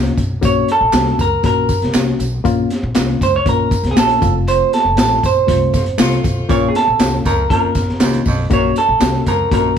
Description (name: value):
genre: uptempo 1960s-style soul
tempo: 119 BPM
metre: 4/4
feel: straight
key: Bb harmonic minor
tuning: A4 = 442 Hz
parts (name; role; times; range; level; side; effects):
- reed electric piano; accompaniment; 0.0-9.8 s; A3 to Gb4; -21 LUFS; left 7 dB; none
- upright bass; bass; 0.0-9.8 s; F1 to Db2; -21 LUFS; equal; none
- crunchy breakbeat drum kit; drums; 0.1-9.6 s; hi-hat, kick drum, snare drum; -18 LUFS; equal; none
- tambourine and handclaps; percussion; 0.2-9.6 s; none; -29 LUFS; right 3 dB; none
- semi-hollow electric guitar; melody; 0.5-9.8 s; Ab4 to Db5; -16 LUFS; right 2 dB; none
- warm horn section; second line; 5.5-6.5 s; A3 to C5; -24 LUFS; left 1 dB; none
- clear baritone saxophone; riff; 6.5-9.7 s; Eb2 to Bb2; -24 LUFS; right 6 dB; none
room: light reverb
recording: band playing live in one room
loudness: -12 LUFS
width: side -8 dB against mid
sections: 0.0-9.8 A section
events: band accent 4.5-6.5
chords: 0.4 Gb/Bb; 2.5 Bbm; 4.2 F; 6.5 Bbm; 8.5 Gb/Bb